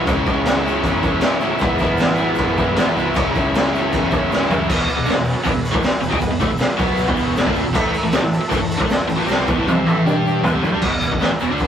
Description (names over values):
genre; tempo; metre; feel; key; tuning
garage rock duo or trio; 156 BPM; 4/4; straight; E major; A4 = 439 Hz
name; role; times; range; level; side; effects
overdriven combo organ; sustained chords; 0.0-11.7 s; D4 to F#5; -28 LUFS; right 1 dB; none
overdriven electric guitar; riff; 0.0-11.7 s; E2 to G4; -19 LUFS; equal; none
growling picked electric bass; bass; 0.0-11.7 s; E1 to A2; -29 LUFS; right 1 dB; overdrive
raw garage drum kit; drums; 0.1-11.7 s; crash cymbal, hi-hat, kick drum, snare drum, toms; -19 LUFS; equal; none
egg shaker; percussion; 0.1-11.7 s; none; -48 LUFS; right 5 dB; none
room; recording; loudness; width
light reverb; rough rehearsal-room recording, cassette tape; -16 LUFS; side -9 dB against mid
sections
0.0-4.7 A section; 4.7-10.8 B section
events
transistor combo organ fill 4.1-4.7; drum fill 4.3-4.7, 9.3-10.8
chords
0.1 C#m; 1.6 E; 3.1 C#m; 4.7 E; 7.8 A5; 10.1 G5; 10.4 A5; 10.8 E